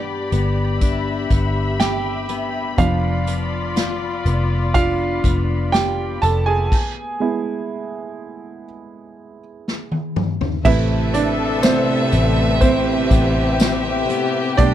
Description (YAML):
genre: pop ballad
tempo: 61 BPM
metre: 4/4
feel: straight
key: A minor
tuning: A4 = 440 Hz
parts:
  - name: warm concert grand piano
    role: accompaniment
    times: 0.0-14.7 s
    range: C3 to A5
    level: -22 LUFS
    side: right 5 dB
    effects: none
  - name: muted studio string section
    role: sustained chords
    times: 0.0-14.7 s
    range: B2 to B5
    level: -25 LUFS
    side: left 3 dB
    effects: none
  - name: picked steel-string acoustic guitar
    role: arpeggios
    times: 0.0-14.7 s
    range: G2 to G4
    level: -27 LUFS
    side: left 9 dB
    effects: none
  - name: vintage muted fingered electric bass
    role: bass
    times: 0.0-14.7 s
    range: F1 to B1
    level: -21 LUFS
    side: equal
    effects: none
  - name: unplugged drum kit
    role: drums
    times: 0.3-14.7 s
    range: crash cymbal, hi-hat, kick drum, snare drum, toms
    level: -20 LUFS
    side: equal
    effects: none
  - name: warm studio violin section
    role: second line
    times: 10.7-14.7 s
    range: C4 to G5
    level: -23 LUFS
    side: right 1 dB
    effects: none
  - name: tambourine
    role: percussion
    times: 11.6-13.8 s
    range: none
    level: -33 LUFS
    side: left 9 dB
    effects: none
room: little or no reverb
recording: none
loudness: -16 LUFS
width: side -11 dB against mid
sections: 0.0-10.7 A section; 10.7-14.7 B section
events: grand piano solo 0.0-10.7, 10.7-14.7; stop 6.7-10.7; drum fill 9.7-10.7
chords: 0.0 G; 2.8 Bdim/F; 6.7 E; 10.7 Amadd9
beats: 0.82 1.80 | 2.78 3.77 4.75 5.74 | 6.72 7.70 8.69 9.67 | 10.65 11.64 12.62 13.60 | 14.59